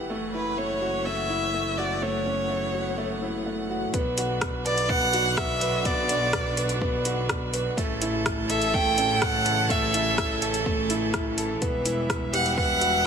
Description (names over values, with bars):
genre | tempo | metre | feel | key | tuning
piano and strings electronica | 125 BPM | 4/4 | straight | B minor | A4 = 440 Hz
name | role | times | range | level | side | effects
clear string quartet | sustained chords | 0.0-13.1 s | B2 to F#5 | -32 LUFS | right 2 dB | sidechain pumping
warm grand piano | riff | 0.0-13.1 s | A3 to B4 | -29 LUFS | right 1 dB | tape echo
muted studio double bass section | bass | 0.0-13.1 s | E1 to B1 | -32 LUFS | equal | sidechain pumping
rich violin | melody | 0.3-13.1 s | B4 to G5 | -25 LUFS | equal | none
deep house drum kit | drums | 3.9-12.9 s | hi-hat, rim click | -30 LUFS | equal | none
electronic kick drum | drums | 3.9-12.7 s | none | -31 LUFS | equal | none
room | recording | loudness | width
light reverb, small room ambience | lossy compression artefacts | -23 LUFS | side -7 dB against mid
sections
0.0-3.9 A section; 3.9-13.1 B section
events
drop 3.9-13.1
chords
0.1 F#m7; 3.9 Bm; 7.8 A; 11.6 Emadd9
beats
| 0.10 0.58 1.06 1.54 | 2.02 2.50 2.98 3.46 | 3.94 4.42 4.90 5.38 | 5.86 6.34 6.82 7.30 | 7.78 8.26 8.74 9.22 | 9.70 10.18 10.66 11.14 | 11.62 12.10 12.58 13.06